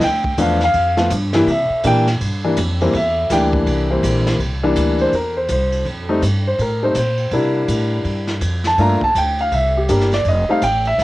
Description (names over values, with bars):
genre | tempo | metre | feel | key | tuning
jazz piano trio | 164 BPM | 4/4 | swing 63% on 8ths | C mixolydian | A4 = 439 Hz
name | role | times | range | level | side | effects
warm concert grand piano | melody | 0.0-11.0 s | E3 to Bb5 | -16 LUFS | left 1 dB | cassette tape
upright bass | bass | 0.0-11.0 s | F1 to C3 | -20 LUFS | equal | none
vintage brush drum kit | drums | 0.0-11.0 s | hi-hat, kick drum, ride cymbal, snare drum | -26 LUFS | right 1 dB | none
room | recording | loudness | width
light reverb | home recording on cassette | -15 LUFS | side -17 dB against mid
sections
0.0-4.4 A section; 4.4-11.0 B section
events
grand piano solo 0.0-4.4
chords
0.0 G7; 1.5 C7; 5.9 F; 7.3 C7; 8.8 Gm7; 9.5 C5; 10.3 F7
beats
| 0.02 0.38 0.75 1.11 | 1.48 1.84 2.21 2.57 | 2.94 3.30 3.67 4.03 | 4.40 4.76 5.13 5.50 | 5.86 6.23 6.59 6.96 | 7.33 7.69 8.06 8.42 | 8.79 9.16 9.52 9.89 | 10.25 10.62 10.98